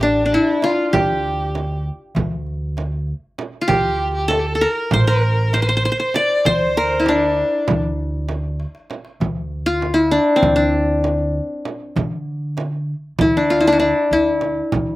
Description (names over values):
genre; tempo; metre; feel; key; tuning
Turkish makam ensemble; 196 BPM (eighths); 9/8; straight; D makam ussak; A4 = 440 Hz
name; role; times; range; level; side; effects
qanun; melody; 0.0-15.0 s; C4 to D5; -17 LUFS; left 1 dB; none
rich violin; second line; 0.0-7.8 s; D4 to D5; -26 LUFS; equal; slapback echo
upright bass; bass; 0.0-15.0 s; A1 to D3; -22 LUFS; right 1 dB; none
darbuka; percussion; 0.0-14.9 s; none; -28 LUFS; left 1 dB; none
frame drum; percussion; 0.0-14.9 s; none; -25 LUFS; right 4 dB; none
room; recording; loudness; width
little or no reverb; recorded outdoors, with no room sound, faint mains hum; -16 LUFS; side -17 dB against mid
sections
0.0-9.2 A section; 9.2-15.0 B section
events
drum fill 8.6-9.2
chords
none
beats
0.01 0.31 0.62 | 0.93 1.23 1.54 1.85 2.15 2.46 2.77 3.08 3.38 | 3.69 4.00 4.30 4.61 4.92 5.22 5.53 5.84 6.14 | 6.45 6.76 7.06 7.37 7.68 7.99 8.29 8.60 8.90 | 9.21 9.52 9.83 10.13 10.44 10.75 11.05 11.36 11.67 | 11.97 12.28 12.59 12.90 13.20 13.51 13.82 14.12 14.43 | 14.74